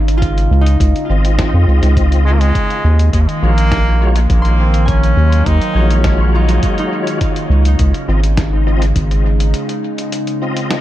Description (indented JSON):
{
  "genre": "ambient dub",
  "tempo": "103 BPM",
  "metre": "4/4",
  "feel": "straight",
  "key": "unclear",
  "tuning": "A4 = 439 Hz",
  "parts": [
    { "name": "warbly tape-like pad", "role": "sustained chords", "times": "0.0-10.8 s", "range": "Db3 to F5", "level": "-21 LUFS", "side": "equal", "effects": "chorus, built-in reverb" },
    { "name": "concert harp", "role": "arpeggios", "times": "0.0-9.5 s", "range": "Eb4 to C6", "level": "-27 LUFS", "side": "right 1 dB", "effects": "tape echo" },
    { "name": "round analog bass", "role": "bass", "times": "0.0-9.5 s", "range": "Ab1 to F2", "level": "-12 LUFS", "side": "equal", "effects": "none" },
    { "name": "lo-fi sampler-style drum kit", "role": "drums", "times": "0.1-10.8 s", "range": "hi-hat, snare drum", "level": "-26 LUFS", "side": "left 1 dB", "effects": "studio ambience, dub echo" },
    { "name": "electronic kick drum", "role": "drums", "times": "0.2-9.1 s", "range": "none", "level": "-18 LUFS", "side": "equal", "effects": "studio ambience" },
    { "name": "bright tonewheel organ", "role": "stabs", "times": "1.1-10.8 s", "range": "Ab3 to Eb5", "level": "-24 LUFS", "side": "left 4 dB", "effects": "overdrive, chorus vibrato, fast rotary speaker, dub echo" },
    { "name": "brilliant trombone", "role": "melody", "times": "2.2-6.3 s", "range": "Ab3 to Eb4", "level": "-22 LUFS", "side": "right 1 dB", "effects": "tape echo" }
  ],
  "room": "little or no reverb",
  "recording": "echo-heavy mix",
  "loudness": "-11 LUFS",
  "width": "side -14 dB against mid",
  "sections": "0.0-10.8 A section",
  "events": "break 9.5-10.8",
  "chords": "0.0 Dbmaj9; 2.5 Ebm11; 7.2 Dbmaj9"
}